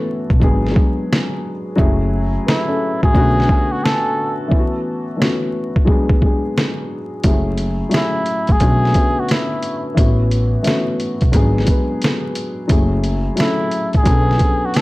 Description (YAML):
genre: lo-fi hip hop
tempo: 88 BPM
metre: 4/4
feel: swing 65% on 16ths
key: F# minor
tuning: A4 = 439 Hz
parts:
  - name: dark upright piano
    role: accompaniment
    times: 0.0-14.8 s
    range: D3 to G#5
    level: -20 LUFS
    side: left 1 dB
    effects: none
  - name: upright bass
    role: bass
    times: 0.3-14.3 s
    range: F#1 to B1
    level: -18 LUFS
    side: equal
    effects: none
  - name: lo-fi sampler-style drum kit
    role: drums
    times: 0.3-14.8 s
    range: hi-hat, kick drum, snare drum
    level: -16 LUFS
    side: equal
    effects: overdrive, vintage 12-bit sampler grit
  - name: trumpet with cup mute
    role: melody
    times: 2.5-14.8 s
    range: E4 to A4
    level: -21 LUFS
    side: equal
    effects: tape echo
room: light reverb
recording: dry, gritty hardware recording, transformer saturation, vinyl crackle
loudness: -14 LUFS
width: side -20 dB against mid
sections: 0.0-14.8 A section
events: break 0.0-7.2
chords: 0.4 G#m7b5; 1.8 F#m9; 3.1 Bm9; 4.5 A69; 5.9 G#m7b5; 7.2 F#m9; 8.6 Bm9; 10.0 A69; 11.3 G#m7b5; 12.7 F#m9; 14.1 Bm9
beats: 0.42 1.10 | 1.79 2.47 3.15 3.83 | 4.51 5.20 5.88 6.56 | 7.24 7.92 8.60 9.29 | 9.97 10.65 11.33 12.01 | 12.70 13.38 14.06 14.74